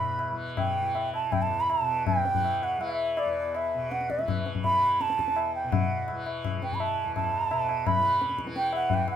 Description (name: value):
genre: indian classical, Hindustani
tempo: 166 BPM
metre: 4/4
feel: uneven beats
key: E raga darbari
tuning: A4 = 440 Hz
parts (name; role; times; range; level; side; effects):
- reedy bansuri; melody; 0.0-9.2 s; D5 to B5; -26 LUFS; right 2 dB; none
- tanpura; drone; 0.0-9.2 s; E2 to E3; -36 LUFS; right 1 dB; none
- tabla; percussion; 0.2-9.2 s; none; -30 LUFS; left 6 dB; none
room: moderate studio reverb, RT60 0.6 s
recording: minimal, uncompressed stereo recording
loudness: -25 LUFS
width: side -9 dB against mid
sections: 0.0-9.2 A section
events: speeding up 0.0-9.2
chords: none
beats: 0.20 0.57 0.95 | 1.32 1.70 2.07 2.44 | 2.81 3.18 3.54 3.91 | 4.28 4.64 5.00 5.36 | 5.72 6.08 6.44 6.80 | 7.15 7.51 7.86 8.21 | 8.57 8.92